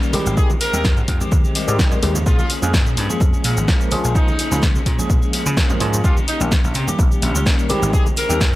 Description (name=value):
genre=filtered disco house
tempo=127 BPM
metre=4/4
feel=swing 53% on 16ths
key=unclear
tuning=A4 = 444 Hz
part: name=bright tine electric piano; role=accompaniment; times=0.0-8.4 s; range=Eb3 to Bb4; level=-24 LUFS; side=equal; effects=medium stereo tremolo, phaser, sidechain pumping
part: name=electric guitar at the edge of break-up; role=riff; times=0.0-8.6 s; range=Eb3 to Ab4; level=-28 LUFS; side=left 2 dB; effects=sidechain pumping
part: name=punchy analog drum machine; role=drums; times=0.0-8.5 s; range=cabasa, hi-hat, snare drum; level=-24 LUFS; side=equal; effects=sidechain pumping on perc, sidechain pumping on hats
part: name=maracas and congas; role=percussion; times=0.0-8.6 s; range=none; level=-30 LUFS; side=right 2 dB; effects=sidechain pumping on perc
part: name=vintage slap bass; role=bass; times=0.1-8.6 s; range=Ab1 to Db3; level=-21 LUFS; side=equal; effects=tube saturation, sidechain pumping
part: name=clear horn section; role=melody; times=0.4-8.5 s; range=Eb4 to Bb4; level=-26 LUFS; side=equal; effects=sidechain pumping, digital delay
part: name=electronic kick drum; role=drums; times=0.4-8.5 s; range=none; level=-17 LUFS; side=equal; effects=none
room=digital ambience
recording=none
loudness=-15 LUFS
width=side -17 dB against mid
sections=0.0-8.6 A section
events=none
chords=0.1 Abmaj7; 2.3 Bbm7; 4.2 Db6; 6.0 Eb7; 7.7 Abmaj7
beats=| 0.38 0.85 1.32 1.79 | 2.26 2.74 3.21 3.68 | 4.15 4.63 5.10 5.57 | 6.04 6.52 6.99 7.46 | 7.93 8.41